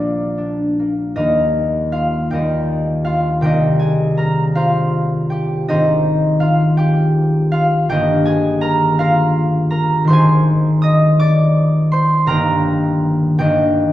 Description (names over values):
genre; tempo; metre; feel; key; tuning
classical, romantic duo for trumpet and harp; 54 BPM (dotted quarters); 6/8; rubato; Eb major; A4 = 440 Hz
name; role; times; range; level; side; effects
warm trumpet; melody; 0.0-0.5 s; D5; -26 LUFS; equal; none
concert harp; accompaniment; 0.0-13.9 s; G1 to Eb6; -13 LUFS; equal; none
room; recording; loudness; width
wet recital hall reverb, RT60 1.7 s; heard from further back in the room; -13 LUFS; side -14 dB against mid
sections
0.0-1.2 A section; 1.2-13.9 B section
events
none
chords
0.0 Bb; 1.2 Eb; 3.4 Cm7; 5.7 Ab; 7.9 Eb/G; 10.1 Ab; 12.3 Eb/G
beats
| 1.19 2.33 | 3.43 4.55 | 5.67 6.78 | 7.89 9.00 | 10.09 11.19 | 12.30 13.41